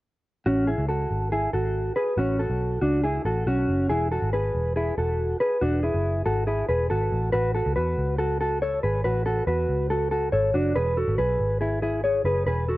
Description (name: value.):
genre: indie pop.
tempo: 140 BPM.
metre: 4/4.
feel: straight.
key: A major.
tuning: A4 = 440 Hz.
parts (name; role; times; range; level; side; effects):
mellow electric guitar; arpeggios; 0.5-12.8 s; C#4 to C#5; -24 LUFS; equal; lush chorus, analog delay.
vintage muted picked electric bass; bass; 0.5-12.7 s; E1 to E2; -27 LUFS; equal; none.
room: moderate club reverb, RT60 0.6 s.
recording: worn, warbling old tape, cassette tape, warbly pitch drift, nothing above 7.6 kHz.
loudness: -22 LUFS.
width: side -18 dB against mid.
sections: 0.5-7.3 A section; 7.3-12.8 B section.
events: none.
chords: 0.5 A6; 3.9 E; 7.1 F#m/A; 7.3 A6; 10.8 E.